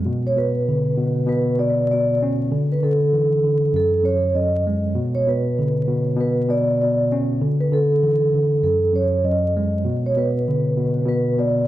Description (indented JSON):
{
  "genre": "hip hop, boom-bap hip-hop",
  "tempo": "98 BPM",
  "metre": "4/4",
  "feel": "swing 63% on 16ths",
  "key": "B dorian",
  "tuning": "A4 = 435 Hz",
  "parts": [
    { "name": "tine electric piano", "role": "accompaniment", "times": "0.0-11.7 s", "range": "F#2 to C#4", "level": "-20 LUFS", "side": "equal", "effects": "medium stereo tremolo" },
    { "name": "vibraphone with soft mallets", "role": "melody", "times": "0.3-11.7 s", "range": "A4 to D#5", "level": "-20 LUFS", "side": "right 1 dB", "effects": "tape echo" }
  ],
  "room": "moderate plate reverb, RT60 3.1 s",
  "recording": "dark, warm production, vinyl crackle",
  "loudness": "-17 LUFS",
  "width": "side -14 dB against mid",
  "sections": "0.1-11.7 A section",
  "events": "none",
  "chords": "0.1 Bm; 2.5 Dsus2; 3.7 F#sus2; 5.0 Bmadd9; 7.4 Dsus2; 8.6 F#sus2; 9.9 Bm"
}